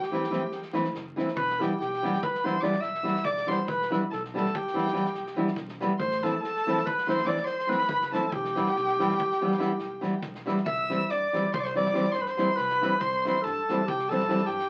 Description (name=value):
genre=balkan folk, Balkan wedding band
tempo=284 BPM (eighths)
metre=11/8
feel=straight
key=E minor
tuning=A4 = 439 Hz
part: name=dark clarinet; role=melody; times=0.0-14.7 s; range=G4 to E5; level=-32 LUFS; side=equal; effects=none
part: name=clear violin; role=second line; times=0.0-14.7 s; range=G5 to E6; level=-34 LUFS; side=equal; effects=none
part: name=upright bass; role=bass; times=0.0-14.7 s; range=E1 to G2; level=-47 LUFS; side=equal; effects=none
part: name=loose indie drum kit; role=percussion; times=0.0-14.7 s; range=kick drum, snare drum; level=-43 LUFS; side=equal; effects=none
part: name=nylon-string guitar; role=accompaniment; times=0.1-14.4 s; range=E3 to E4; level=-31 LUFS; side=equal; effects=none
room=wet club reverb, RT60 0.5 s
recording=very old 78 rpm record, vinyl crackle, nothing above 10.8 kHz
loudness=-28 LUFS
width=mono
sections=0.0-10.7 A section; 10.7-14.7 B section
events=none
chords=0.0 Am; 1.4 Em; 6.0 Am; 8.3 Em; 10.7 C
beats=0.10 0.31 0.52 0.73 0.94 1.15 | 1.36 1.57 1.78 2.00 2.21 2.42 2.63 2.84 3.05 3.26 3.47 | 3.68 3.89 4.10 4.31 4.52 4.73 4.94 5.15 5.37 5.58 5.79 | 6.00 6.21 6.42 6.63 6.84 7.05 7.26 7.48 7.69 7.90 8.11 | 8.32 8.54 8.75 8.96 9.17 9.38 9.60 9.81 10.02 10.23 10.45 | 10.66 10.88 11.09 11.30 11.52 11.73 11.94 12.15 12.37 12.58 12.79 | 13.01 13.22 13.43 13.65 13.86 14.07 14.29 14.50